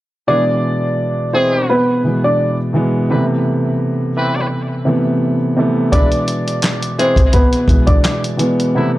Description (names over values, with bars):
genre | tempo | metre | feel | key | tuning
hip hop, boom-bap hip-hop | 85 BPM | 4/4 | swing 54% on 16ths | unclear | A4 = 441 Hz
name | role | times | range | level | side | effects
dark upright piano | melody | 0.3-8.2 s | B3 to D5 | -17 LUFS | equal | high-pass filter, low-pass filter, tape echo
dark grand piano | accompaniment | 0.3-9.0 s | B2 to B3 | -16 LUFS | equal | high-pass filter, low-pass filter
warm horn section | stabs | 0.3-8.9 s | C3 to B4 | -23 LUFS | equal | high-pass filter, low-pass filter, tape echo
dusty soul sampler-style drum kit | drums | 5.9-8.7 s | handclaps, hi-hat, kick drum, snare drum | -14 LUFS | equal | none
room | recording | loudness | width
light reverb | dry, gritty hardware recording | -13 LUFS | side -16 dB against mid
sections
0.3-9.0 A section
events
none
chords
0.3 E; 3.1 Amadd9; 5.9 E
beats
| 0.28 0.99 1.69 2.40 | 3.10 3.81 4.51 5.22 | 5.93 6.63 7.34 8.04 | 8.75